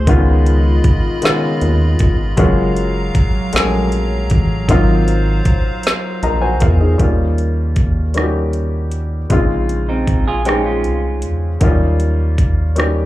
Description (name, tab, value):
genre	slow six-eight R&B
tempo	52 BPM (dotted quarters)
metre	6/8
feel	straight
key	unclear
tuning	A4 = 439 Hz
part	dark baby grand piano	accompaniment	0.0-13.1 s	Db3 to Bb5	-19 LUFS	left 2 dB	slapback echo
part	hollow soft pad	sustained chords	0.0-7.0 s	Gb3 to Cb6	-24 LUFS	right 1 dB	chorus
part	rubbery square bass	bass	0.0-13.1 s	Gb1 to E2	-16 LUFS	equal	none
part	smooth R&B drum kit	drums	0.1-13.0 s	hi-hat, kick drum, rim click, snare drum	-15 LUFS	equal	none
part	semi-hollow electric guitar	second line	9.9-11.6 s	C4 to Ab4	-22 LUFS	right 4 dB	tape echo
room	little or no reverb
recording	live gig heard through the venue's PA, club reverb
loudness	-13 LUFS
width	side -16 dB against mid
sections	0.0-7.0 A section; 7.0-13.1 B section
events	grand piano fill 5.8-7.0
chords	0.1 Db9; 2.4 Gbmaj7; 4.7 Ab13; 7.0 Eb9; 9.3 Bbm11; 11.6 Eb9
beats	| 0.07 1.23 | 2.38 3.54 | 4.69 5.84 | 7.00 8.15 | 9.30 10.46 | 11.61 12.77